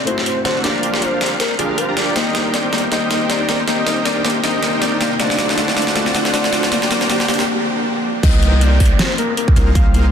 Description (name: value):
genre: future bass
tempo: 158 BPM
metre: 4/4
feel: swing 56% on 16ths, half-time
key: C minor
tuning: A4 = 440 Hz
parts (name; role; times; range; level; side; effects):
- soft octave-layered synth lead; melody; 0.0-10.0 s; Ab4 to F5; -23 LUFS; left 1 dB; chorus, sidechain pumping, tape echo
- felt-muted upright piano; accompaniment; 0.0-2.2 s; A3 to G4; -27 LUFS; left 2 dB; sidechain pumping, ping-pong delay
- shimmering ambient pad; sustained chords; 0.0-10.1 s; C3 to Bb4; -31 LUFS; equal; none
- riser and downlifter; sound effects; 0.0-10.1 s; none; -26 LUFS; right 1 dB; none
- dubstep drum kit; drums; 0.1-10.0 s; crash cymbal, hi-hat, snare drum; -20 LUFS; equal; overdrive, high-pass filter on snare, high-pass filter on hats, high-pass filter on cymbals, high-pass filter on room
- dense compressed supersaw; riff; 0.4-10.1 s; D4 to Bb5; -21 LUFS; right 1 dB; sidechain pumping, low-pass filter
- Celtic harp; arpeggios; 2.2-10.1 s; A3 to Eb4; -23 LUFS; left 5 dB; sidechain pumping, ping-pong delay
- long sustained 808-style bass; bass; 8.2-10.1 s; C2; -14 LUFS; equal; sidechain pumping
- electronic kick drum; drums; 8.2-9.8 s; none; -14 LUFS; equal; overdrive
room: moderate huge ambient reverb, RT60 7.1 s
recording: dense, heavily limited modern master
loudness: -14 LUFS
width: side -8 dB against mid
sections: 0.0-8.2 A section; 8.2-10.1 B section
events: build-up 0.0-8.2; drum fill 0.0-7.5; riser 0.0-7.5; break 7.5-8.2; drop 8.2-10.1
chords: 0.0 D7; 0.6 Gm7; 2.2 Cm7; 3.5 Ab69/C; 5.2 D7; 6.7 Gm7; 8.2 Cm7; 9.6 Ab69/C